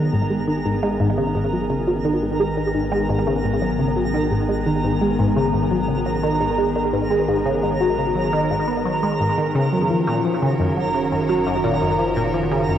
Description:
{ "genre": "ambient, sequencer-driven space music", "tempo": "86 BPM", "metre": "4/4", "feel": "straight", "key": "unclear", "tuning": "A4 = 435 Hz", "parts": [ { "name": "evolving wavetable pad", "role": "sustained chords", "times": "0.0-12.8 s", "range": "D#3 to A#4", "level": "-23 LUFS", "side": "equal", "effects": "chorus, built-in reverb" }, { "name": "resonant blip pluck", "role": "riff", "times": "0.0-12.8 s", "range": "F#2 to B3", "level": "-20 LUFS", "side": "equal", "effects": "phaser, tape echo" }, { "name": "round analog bass", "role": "bass", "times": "0.0-12.8 s", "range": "F#1 to G#1", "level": "-31 LUFS", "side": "equal", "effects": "none" }, { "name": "twinkling granular texture", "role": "texture", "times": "0.0-12.8 s", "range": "A#5", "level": "-28 LUFS", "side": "right 2 dB", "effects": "built-in reverb" } ], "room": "wet spring reverb, RT60 2.4 s", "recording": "home recording on cassette", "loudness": "-18 LUFS", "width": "side -10 dB against mid", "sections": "0.0-12.8 A section", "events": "none", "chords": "0.0 G#madd9; 9.7 F#6" }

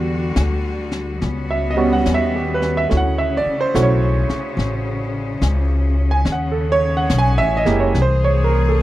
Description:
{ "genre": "jazz ballad", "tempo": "71 BPM", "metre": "4/4", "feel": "swing 66% on 8ths", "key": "unclear", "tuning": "A4 = 440 Hz", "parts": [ { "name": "clear grand piano", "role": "accompaniment", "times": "0.0-8.8 s", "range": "G3 to G#5", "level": "-19 LUFS", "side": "right 3 dB", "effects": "none" }, { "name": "bright studio cello section", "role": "sustained chords", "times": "0.0-8.8 s", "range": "C#3 to Ab4", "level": "-26 LUFS", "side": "left 4 dB", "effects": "none" }, { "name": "upright bass", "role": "bass", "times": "0.0-8.8 s", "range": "F#1 to E2", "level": "-19 LUFS", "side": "left 1 dB", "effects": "none" }, { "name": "jazz brush drum kit", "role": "drums", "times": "0.4-8.8 s", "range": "brushed snare drum, hi-hat, snare drum", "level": "-25 LUFS", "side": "left 2 dB", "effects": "none" } ], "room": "little or no reverb", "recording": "dry, close 1970s-style studio recording", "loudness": "-16 LUFS", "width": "side -15 dB against mid", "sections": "0.0-8.8 A section", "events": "none", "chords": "0.0 Em9; 1.2 D#7alt/C#; 2.9 Dmaj7; 6.3 D#m7b5; 8.0 C7b13" }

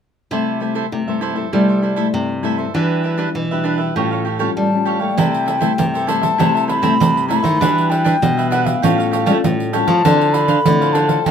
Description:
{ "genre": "samba and choro", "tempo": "99 BPM", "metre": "4/4", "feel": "straight", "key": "C major", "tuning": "A4 = 441 Hz", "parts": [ { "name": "cavaquinho", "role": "accompaniment", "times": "0.3-11.3 s", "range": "D4 to F5", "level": "-22 LUFS", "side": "right 6 dB", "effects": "none" }, { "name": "nylon-string guitar", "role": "accompaniment", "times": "0.3-11.3 s", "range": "G2 to F#4", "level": "-22 LUFS", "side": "left 6 dB", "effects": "none" }, { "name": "nylon-string guitar", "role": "bass", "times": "0.3-11.3 s", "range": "A2 to C4", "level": "-19 LUFS", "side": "equal", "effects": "none" }, { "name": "baroque flute", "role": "melody", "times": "4.6-11.3 s", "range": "F5 to B5", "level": "-18 LUFS", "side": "left 3 dB", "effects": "none" }, { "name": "pandeiro", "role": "percussion", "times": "5.2-11.3 s", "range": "none", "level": "-20 LUFS", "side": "right 5 dB", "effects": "none" } ], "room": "moderate studio reverb, RT60 0.6 s", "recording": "minimal, uncompressed stereo recording", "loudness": "-14 LUFS", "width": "side -8 dB against mid", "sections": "0.3-5.2 A section; 5.2-11.3 B section", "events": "none", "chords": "0.3 C6; 2.7 Em9; 4.0 A7b13; 5.2 C6; 7.6 Em9; 8.8 Aaug7; 10.0 Dm9" }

